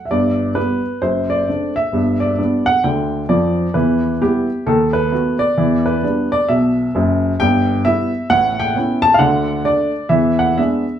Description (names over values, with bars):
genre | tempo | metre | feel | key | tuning
jazz, stride piano | 132 BPM | 4/4 | swing 62% on 8ths | G major | A4 = 439 Hz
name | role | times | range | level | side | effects
warm upright piano | solo | 0.0-11.0 s | F#1 to A5 | -14 LUFS | equal | none
room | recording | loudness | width
wet club reverb, RT60 0.7 s | heard from further back in the room | -14 LUFS | side -9 dB against mid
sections
0.1-11.0 A section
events
none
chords
0.1 G; 1.0 D7/F#; 1.9 G; 3.7 Em; 4.7 B7/D#; 5.6 Em7; 7.4 Em/G; 8.3 A9; 9.2 D; 10.1 E7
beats
| 0.10 0.56 1.01 1.47 | 1.93 2.38 2.83 3.29 | 3.75 4.20 4.66 5.11 | 5.57 6.02 6.48 6.93 | 7.39 7.84 8.30 8.75 | 9.21 9.66 10.12 10.58